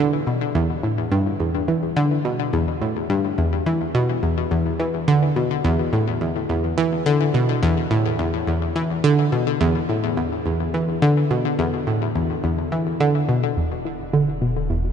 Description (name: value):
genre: ambient, sequencer-driven space music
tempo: 106 BPM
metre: 4/4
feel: straight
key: E minor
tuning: A4 = 440 Hz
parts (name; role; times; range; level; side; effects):
- analog pluck; riff; 0.0-14.8 s; E2 to E3; -19 LUFS; equal; chorus, ping-pong delay, shimmer reverb
- round analog bass; bass; 13.6-14.9 s; E1; -29 LUFS; equal; none
room: wet huge ambient reverb, RT60 8.9 s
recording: nothing above 10.4 kHz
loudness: -19 LUFS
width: side -7 dB against mid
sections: 0.0-13.6 A section; 13.6-14.9 B section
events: filter sweep on synth arpeggio sound 13.6-14.9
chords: 0.0 E7(no3); 13.6 E5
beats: 0.55 1.12 1.68 | 2.25 2.81 3.38 3.95 | 4.51 5.08 5.64 6.21 | 6.78 7.34 7.91 8.47 | 9.04 9.61 10.17 10.74 | 11.30 11.87 12.44 13.00 | 13.57 14.13 14.70